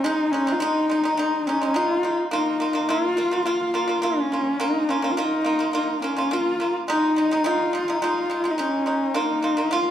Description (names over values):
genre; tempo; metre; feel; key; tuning
mongolian traditional, Mongolian folk; 106 BPM; 4/4; straight; Bb yu mode; A4 = 440 Hz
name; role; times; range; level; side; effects
warm horsehead fiddle; melody; 0.0-9.9 s; Db4 to F4; -22 LUFS; left 1 dB; none
pipa; arpeggios; 0.0-9.9 s; Ab3 to F4; -24 LUFS; right 1 dB; none
room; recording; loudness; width
wet recital hall reverb, RT60 1.5 s; none; -20 LUFS; side -10 dB against mid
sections
0.0-9.9 A section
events
none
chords
0.0 Ab5; 2.3 Bb5; 6.9 Ab5; 9.2 Bb5